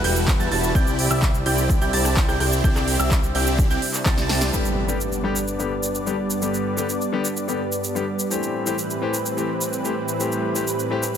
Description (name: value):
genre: EDM, festival progressive house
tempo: 127 BPM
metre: 4/4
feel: straight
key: G major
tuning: A4 = 440 Hz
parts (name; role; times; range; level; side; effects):
- lush unison pad; sustained chords; 0.0-11.2 s; G2 to D5; -26 LUFS; right 1 dB; chorus, sidechain pumping
- bright grand piano; arpeggios; 0.0-4.5 s; E6 to A6; -30 LUFS; right 4 dB; sidechain pumping, digital delay
- supersaw chords; riff; 0.0-4.5 s; G3 to A5; -25 LUFS; right 1 dB; sidechain pumping, low-pass filter, digital delay
- fat analog bass; bass; 0.0-4.5 s; E1 to E2; -24 LUFS; equal; sidechain pumping
- big-room dance drum kit; drums; 0.0-11.2 s; handclaps, hi-hat, rim click, shaker, snare drum; -27 LUFS; right 1 dB; none
- electronic kick drum; drums; 0.3-4.2 s; none; -20 LUFS; equal; none
- bright concert grand piano; accompaniment; 4.5-11.0 s; D3 to G4; -26 LUFS; left 5 dB; sidechain pumping, digital delay
- impact; sound effects; 4.5-6.4 s; none; -30 LUFS; equal; none
room: light reverb, digital ambience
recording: dense, heavily limited modern master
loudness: -19 LUFS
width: side -9 dB against mid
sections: 0.0-4.5 A section; 4.5-11.2 B section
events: drop 0.0-4.5; drum fill 4.2-4.5; band accent 4.4; impact 4.5-6.4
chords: 0.0 Emadd9; 0.8 Cadd9; 4.5 G; 8.3 Am7